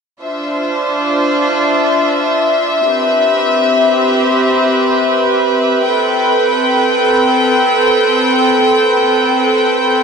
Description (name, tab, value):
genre	drum and bass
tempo	free time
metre	none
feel	none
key	unclear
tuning	A4 = 435 Hz
part	rich chamber string section	sustained chords	0.2-10.0 s	C4 to G5	-10 LUFS	equal	vintage 12-bit sampler grit
room	wet huge ambient reverb, RT60 7.5 s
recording	dreamy mix soaked in reverb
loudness	-10 LUFS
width	side -5 dB against mid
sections	0.2-10.0 A section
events	none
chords	0.2 Dm9; 2.9 Cmaj7; 5.8 Am9